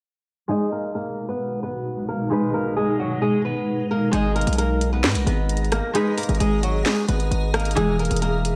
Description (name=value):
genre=hip hop, trap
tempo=132 BPM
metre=4/4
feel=half-time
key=G# minor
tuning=A4 = 440 Hz
part: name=flamenco guitar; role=melody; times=0.5-8.5 s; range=F#3 to B4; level=-27 LUFS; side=equal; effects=low-pass filter, delay
part: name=concert harp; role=accompaniment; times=0.5-8.6 s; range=E3 to D#5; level=-31 LUFS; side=equal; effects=low-pass filter
part: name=granular cloud pad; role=sustained chords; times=1.1-8.6 s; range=B2 to A#5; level=-30 LUFS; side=equal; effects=built-in reverb
part: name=hard-hitting 808-style bass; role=bass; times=4.1-8.5 s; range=E1 to G#2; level=-25 LUFS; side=equal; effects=none
part: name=trap drum kit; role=drums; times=4.1-8.6 s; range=handclaps, hi-hat, rim click, snare drum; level=-28 LUFS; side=equal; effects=vintage 12-bit sampler grit
room=moderate plate reverb, RT60 1.3 s, studio ambience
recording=dreamy mix soaked in reverb, low-pass filter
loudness=-22 LUFS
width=mono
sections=0.5-4.1 A section; 4.1-8.6 B section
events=filter sweep 0.5-4.1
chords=0.5 G#madd9; 7.8 E